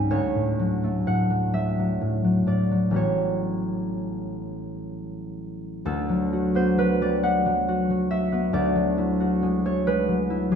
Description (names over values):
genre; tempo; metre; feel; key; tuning
classical, solo harp piece; 40-46 BPM (dotted quarters); 6/8; rubato; D major; A4 = 436 Hz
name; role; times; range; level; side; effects
concert harp; solo; 0.0-10.6 s; A1 to Bb5; -22 LUFS; equal; none
room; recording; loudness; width
wet stone room reverb, RT60 1.3 s; none; -21 LUFS; side -7 dB against mid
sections
0.0-5.9 A section; 5.9-10.6 B section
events
none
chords
0.1 Dmaj7; 3.0 A13; 5.9 D6; 8.6 E9/D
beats
| 0.10 1.55 | 2.96 4.43 | 5.86 7.24 | 8.55 9.87